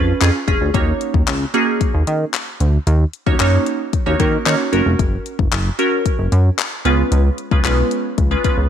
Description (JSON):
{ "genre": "dance-pop", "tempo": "113 BPM", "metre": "4/4", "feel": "straight", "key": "unclear", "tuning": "A4 = 440 Hz", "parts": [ { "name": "glassy wavetable pluck", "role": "accompaniment", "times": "0.0-8.6 s", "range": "G#3 to C#5", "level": "-19 LUFS", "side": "right 2 dB", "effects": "chorus, sidechain pumping" }, { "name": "chorused synth bass", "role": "bass", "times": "0.0-8.7 s", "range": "E#1 to D#3", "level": "-16 LUFS", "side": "equal", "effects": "sidechain pumping" }, { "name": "pop drum kit", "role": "drums", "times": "0.2-8.6 s", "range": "handclaps, hi-hat, kick drum", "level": "-20 LUFS", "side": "left 3 dB", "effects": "none" } ], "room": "light reverb", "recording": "1960s-style stereo", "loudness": "-15 LUFS", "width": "side -9 dB against mid", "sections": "0.0-8.7 A section", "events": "none", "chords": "0.0 C#/E#; 0.7 D#m7; 4.7 F#; 6.9 C#7" }